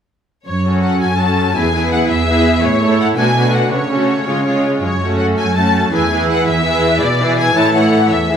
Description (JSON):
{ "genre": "classical, dramatic, fast romantic movement for symphony orchestra", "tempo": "110 BPM (dotted quarters)", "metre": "6/8", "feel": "straight", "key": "F# minor", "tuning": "A4 = 440 Hz", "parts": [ { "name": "clear symphonic violin section", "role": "melody", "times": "0.5-8.4 s", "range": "C#5 to A5", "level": "-18 LUFS", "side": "left 4 dB", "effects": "none" }, { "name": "rich symphonic cello section", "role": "bass", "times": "0.5-8.4 s", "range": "E2 to C#3", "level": "-18 LUFS", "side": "right 2 dB", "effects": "none" }, { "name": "rich symphonic violin section", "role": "second line", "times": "0.6-8.4 s", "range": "E#4 to C#5", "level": "-20 LUFS", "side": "left 2 dB", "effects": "none" }, { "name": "rich symphonic viola section", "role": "accompaniment", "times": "0.7-8.4 s", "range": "E3 to E4", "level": "-17 LUFS", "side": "right 2 dB", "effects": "none" } ], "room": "moderate concert hall reverb, RT60 2.1 s", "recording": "none", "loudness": "-12 LUFS", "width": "side -8 dB against mid", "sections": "0.5-8.4 A section", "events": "none", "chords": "0.5 F#m; 1.6 E; 2.6 A; 3.2 Bm7; 3.7 F#m/C#; 4.3 C#; 4.8 F#m; 5.9 E; 7.0 E7/B; 7.6 A", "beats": "| 0.47 1.02 | 1.56 2.10 | 2.64 3.18 | 3.73 4.29 | 4.84 5.39 | 5.93 6.47 | 7.01 7.56 | 8.12" }